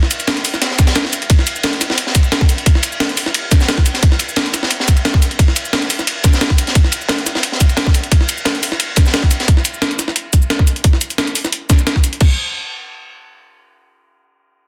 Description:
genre	drum and bass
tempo	176 BPM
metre	4/4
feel	straight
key	none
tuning	none
part	breakbeat sampler-style drum kit	drums	0.0-12.3 s	crash cymbal, hi-hat, shaker, snare drum	-20 LUFS	equal	studio reverb
part	crunchy breakbeat drum kit	drums	0.1-9.5 s	ride cymbal, snare drum	-23 LUFS	equal	high-pass filter on cymbals, studio reverb, high-pass filter on snare, high-pass filter on room
part	electronic kick drum	drums	0.8-12.3 s	none	-14 LUFS	equal	studio reverb
room	light reverb, small room ambience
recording	dense, heavily limited modern master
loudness	-15 LUFS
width	mono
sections	0.0-12.2 A section; 12.2-14.7 B section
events	drop 0.0-12.2; break 1.0-1.3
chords	none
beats	0.28 0.62 0.96 | 1.30 1.64 1.98 2.32 | 2.66 3.00 3.34 3.68 | 4.03 4.37 4.71 5.05 | 5.39 5.73 6.07 6.41 | 6.75 7.09 7.43 7.78 | 8.12 8.46 8.80 9.14 | 9.48 9.82 10.16 10.50 | 10.84 11.18 11.53 11.87 | 12.21

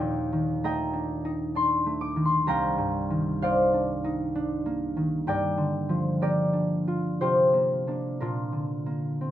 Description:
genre	classical, solo harp piece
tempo	59-66 BPM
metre	3/4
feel	rubato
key	unclear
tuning	A4 = 442 Hz
part	concert harp	solo	0.0-9.3 s	C2 to D6	-24 LUFS	equal	none
room	light reverb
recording	minimal, uncompressed stereo recording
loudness	-24 LUFS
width	side -12 dB against mid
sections	0.0-9.3 A section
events	none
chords	0.0 Ebmaj7#11; 2.5 Cm11; 5.3 Gm7; 7.2 C9sus4; 8.2 Bbadd9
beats	0.64 1.55 | 2.47 3.41 4.35 | 5.28 6.22 7.21 | 8.20 9.21

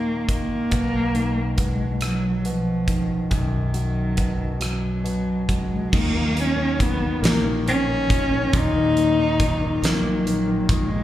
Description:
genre	six-eight pop ballad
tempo	46 BPM (dotted quarters)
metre	6/8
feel	straight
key	Eb minor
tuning	A4 = 440 Hz
part	dark cello	melody	0.0-11.0 s	D#3 to Eb4	-23 LUFS	equal	none
part	clear concert grand piano	accompaniment	0.0-11.0 s	F#2 to Bb3	-28 LUFS	left 2 dB	slapback echo
part	mellow fretless electric bass	bass	0.0-11.0 s	Bb1 to Eb2	-27 LUFS	equal	none
part	huge arena drum kit	drums	0.3-10.9 s	crash cymbal, hi-hat, kick drum, rim click, snare drum	-25 LUFS	equal	none
part	fingerpicked steel-string acoustic guitar	arpeggios	5.9-11.0 s	Eb3 to Bb4	-33 LUFS	left 3 dB	none
room	light reverb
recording	live gig heard through the venue's PA, club reverb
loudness	-19 LUFS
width	side -13 dB against mid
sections	0.0-5.9 A section; 5.9-11.0 B section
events	none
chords	0.0 Eb5; 0.7 B; 5.9 Ebmadd9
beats	| 0.72 2.01 | 3.31 4.61 | 5.92 7.23 | 8.53 9.83

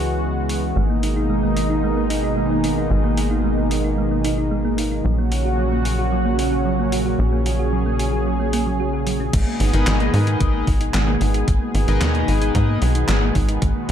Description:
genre	synthwave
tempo	112 BPM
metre	4/4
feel	straight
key	G# minor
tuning	A4 = 440 Hz
part	lush unison pad	sustained chords	0.0-13.9 s	A#2 to G#4	-22 LUFS	equal	chorus, sidechain pumping
part	tight sequencer bass	bass	0.0-13.9 s	G#1 to G#2	-21 LUFS	equal	tube saturation
part	gated 80s digital drum machine	drums	0.5-13.9 s	crash cymbal, handclaps, hi-hat, snare drum	-28 LUFS	equal	gated reverb, gated reverb snare, overdrive
part	thumb-piano-like synth pluck	arpeggios	0.8-13.9 s	F#3 to F#4	-26 LUFS	right 3 dB	chorus, tape echo
part	electronic kick drum	drums	9.3-13.7 s	none	-21 LUFS	equal	overdrive
part	chorused polysynth	stabs	9.7-12.8 s	D#4 to D#5	-27 LUFS	left 5 dB	tape echo
room	light reverb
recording	dark, warm production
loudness	-17 LUFS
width	side -9 dB against mid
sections	0.0-9.3 A section; 9.3-13.9 B section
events	none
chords	0.0 C#m7; 0.8 G#madd9; 5.0 F#/A#; 9.3 G#madd9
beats	0.23 | 0.76 1.30 1.83 2.37 | 2.91 3.44 3.98 4.51 | 5.05 5.58 6.12 6.66 | 7.19 7.73 8.26 8.80 | 9.34 9.87 10.41 10.94 | 11.48 12.01 12.55 13.09 | 13.62

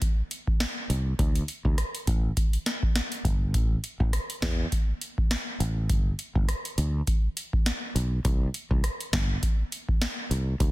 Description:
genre	dancehall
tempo	102 BPM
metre	4/4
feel	swing 56% on 16ths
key	unclear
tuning	A4 = 440 Hz
part	booming analog drum machine	drums	0.0-10.7 s	hi-hat, kick drum, rim click, snare drum	-26 LUFS	equal	none
part	sustaining fretless electric bass	bass	0.9-10.7 s	G1 to E2	-27 LUFS	equal	none
room	little or no reverb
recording	dense, heavily limited modern master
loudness	-25 LUFS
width	side -18 dB against mid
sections	0.0-10.7 A section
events	none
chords	none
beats	0.01 0.60 | 1.19 1.78 2.37 2.96 | 3.54 4.13 4.72 5.31 | 5.90 6.48 7.07 7.66 | 8.25 8.84 9.43 10.01 | 10.60

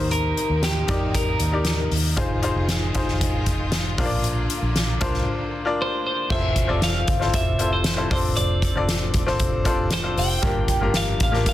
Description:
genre	piano-driven pop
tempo	116 BPM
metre	4/4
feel	straight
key	F major from 6.3 s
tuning	A4 = 440 Hz
part	twelve-string electric guitar	melody	0.0-1.9, 5.8-11.5 s	G4 to G5	-26 LUFS	right 1 dB	none
part	bright upright piano	accompaniment	0.0-11.5 s	G2 to D5	-26 LUFS	left 3 dB	none
part	clear studio string section	sustained chords	0.0-6.3 s	C3 to F4	-33 LUFS	equal	none
part	vintage muted fingered electric bass	bass	0.0-11.5 s	E1 to F2	-25 LUFS	equal	none
part	soft-mallet drum kit	drums	0.1-11.5 s	crash cymbal, hi-hat, kick drum, snare drum	-24 LUFS	equal	none
room	light reverb, small room ambience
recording	dense, heavily limited modern master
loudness	-20 LUFS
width	side -13 dB against mid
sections	0.0-6.3 A section; 6.3-11.5 B section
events	none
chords	0.0 Cm7/Eb; 2.2 Fm7; 4.0 Bb; 6.3 Fmaj7; 8.1 Dm7; 10.4 Gm7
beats	| 0.11 0.63 1.14 1.66 | 2.18 2.69 3.21 3.73 | 4.24 4.76 5.27 5.79 | 6.30 6.82 7.34 7.85 | 8.37 8.88 9.40 9.91 | 10.43 10.95 11.46

